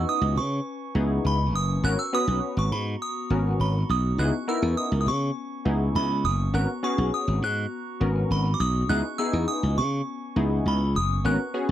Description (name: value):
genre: funk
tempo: 102 BPM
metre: 4/4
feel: straight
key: C# dorian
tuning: A4 = 440 Hz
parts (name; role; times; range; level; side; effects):
- delicate synth tine bell; melody; 0.0-11.7 s; B5 to F#6; -29 LUFS; right 2 dB; chorus, phaser, slapback echo
- funky polysynth comp; accompaniment; 0.0-11.7 s; B3 to B4; -28 LUFS; left 2 dB; chorus
- glass harmonica; sustained chords; 0.0-11.7 s; B3 to C#6; -36 LUFS; left 3 dB; none
- glassy slap bass; bass; 0.0-11.7 s; F#1 to C#3; -24 LUFS; equal; none
room: little or no reverb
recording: dry, close 1970s-style studio recording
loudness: -23 LUFS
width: side -12 dB against mid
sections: 0.0-11.7 A section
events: none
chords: 0.0 C#m7; 1.8 G#m11; 4.2 C#m7; 6.5 G#m11; 8.9 C#m7